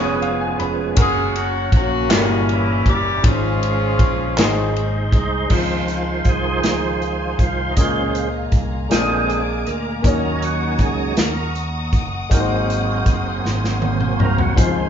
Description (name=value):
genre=slow gospel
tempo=53 BPM (dotted quarters)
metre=6/8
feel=straight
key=Db major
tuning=A4 = 442 Hz
part: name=clear horn section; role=melody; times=0.0-5.1 s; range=E3 to Cb5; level=-22 LUFS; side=left 2 dB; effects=none
part: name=warm baby grand piano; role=accompaniment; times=0.0-14.9 s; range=Ab2 to Cb6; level=-25 LUFS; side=left 2 dB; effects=none
part: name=overdriven tonewheel organ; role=sustained chords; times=0.0-14.9 s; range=Db3 to C5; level=-23 LUFS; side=right 4 dB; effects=chorus vibrato, slow rotary speaker
part: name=fingered electric bass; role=bass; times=0.0-14.9 s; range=F1 to Eb2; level=-24 LUFS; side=equal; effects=none
part: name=natural country drum kit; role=drums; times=0.2-14.8 s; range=crash cymbal, hi-hat, kick drum, ride cymbal, snare drum, toms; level=-19 LUFS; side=equal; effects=none
part: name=group handclap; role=percussion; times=2.1-4.7 s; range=none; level=-27 LUFS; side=right 2 dB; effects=none
part: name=warm studio string section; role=sustained chords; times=5.5-14.9 s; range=F5 to Eb6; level=-30 LUFS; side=left 1 dB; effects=none
room=wet large studio reverb, RT60 1.2 s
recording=band playing live in one room, nothing above 7.5 kHz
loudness=-16 LUFS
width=side -8 dB against mid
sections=0.0-5.5 A section; 5.5-14.9 B section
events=grand piano fill 0.0-1.0; tonewheel organ solo 5.5-14.9; drum fill 13.4-14.6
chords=0.0 Db7/F; 1.0 Gb; 2.1 Gdim7; 3.2 Db/Ab; 4.4 Ab; 5.5 Dbmaj7; 7.8 Bbm7/Db; 8.9 Bb7; 10.0 Ebm7; 12.3 Ab7